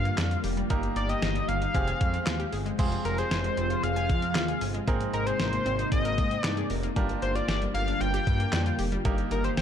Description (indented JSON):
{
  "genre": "synth-pop",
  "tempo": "115 BPM",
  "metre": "4/4",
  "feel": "straight",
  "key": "F dorian",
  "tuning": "A4 = 440 Hz",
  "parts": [
    { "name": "octave-doubled lead", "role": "melody", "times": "0.0-9.6 s", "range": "Bb4 to G5", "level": "-31 LUFS", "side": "left 1 dB", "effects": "chorus, ping-pong delay" },
    { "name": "bright baby grand piano", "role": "accompaniment", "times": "0.0-9.6 s", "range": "Bb3 to C5", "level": "-37 LUFS", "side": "right 4 dB", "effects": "none" },
    { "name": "soft string machine", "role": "sustained chords", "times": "0.0-9.6 s", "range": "C3 to G5", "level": "-33 LUFS", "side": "equal", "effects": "ensemble chorus" },
    { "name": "smooth synth bass", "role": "bass", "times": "0.0-9.6 s", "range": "F1 to Ab2", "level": "-31 LUFS", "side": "equal", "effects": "none" },
    { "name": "analog pluck", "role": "arpeggios", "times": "0.1-9.6 s", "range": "G3 to Ab5", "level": "-37 LUFS", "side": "left 6 dB", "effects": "chorus, ping-pong delay" },
    { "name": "clean 12-bit digital drum machine", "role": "drums", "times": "0.1-9.6 s", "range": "crash cymbal, handclaps, hi-hat, kick drum, snare drum", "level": "-30 LUFS", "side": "equal", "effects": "none" }
  ],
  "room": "light reverb",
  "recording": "dark, warm production",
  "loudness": "-25 LUFS",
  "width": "side -9 dB against mid",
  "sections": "0.0-2.8 A section; 2.8-9.6 A section",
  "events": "none",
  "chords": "0.0 Gm7; 0.7 Eb/G; 1.7 Fmadd9; 4.9 Abadd9; 7.0 Gm7; 9.1 Eb/G"
}